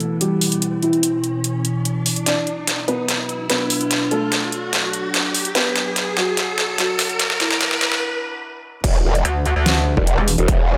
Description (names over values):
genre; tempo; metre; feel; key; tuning
heavy wobble dubstep; 146 BPM; 4/4; half-time; E minor; A4 = 439 Hz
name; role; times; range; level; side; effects
felt-muted upright piano; melody; 0.0-8.8 s; E3 to D5; -26 LUFS; equal; low-pass filter, dub echo
evolving wavetable pad; sustained chords; 0.0-10.8 s; B2 to G4; -29 LUFS; equal; phaser, built-in reverb, sidechain pumping
dubstep drum kit; drums; 0.0-10.6 s; crash cymbal, hi-hat, snare drum; -23 LUFS; equal; overdrive, high-pass filter on hats, high-pass filter on snare, high-pass filter on cymbals, high-pass filter on room
riser; sound effects; 0.0-8.0 s; none; -29 LUFS; equal; none
growl bass; bass; 8.8-10.8 s; E1; -20 LUFS; equal; chorus, overdrive
electronic kick drum; drums; 8.8-10.6 s; none; -21 LUFS; equal; overdrive
metallic wobble bass; bass; 9.2-10.4 s; E1 to D2; -20 LUFS; equal; chorus, overdrive
room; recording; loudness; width
moderate lush hall reverb, RT60 1.8 s, digital ambience; high-pass filter; -20 LUFS; mono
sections
0.0-8.8 A section; 8.8-10.8 B section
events
build-up 0.0-8.8; riser 0.0-8.0; filter sweep on ambient pad 0.0-8.8; filter sweep on felt piano 0.0-8.8; filter sweep 0.0-8.8; drum fill 2.3-8.0; break 8.0-8.8; drop 8.8-10.8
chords
0.0 Em; 2.3 Bm; 8.8 Em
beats
0.21 | 0.62 1.03 1.44 1.85 | 2.26 2.67 3.08 3.50 | 3.91 4.32 4.73 5.14 | 5.55 5.96 6.37 6.78 | 7.20 7.61 8.02 8.43 | 8.84 9.25 9.66 10.07 | 10.48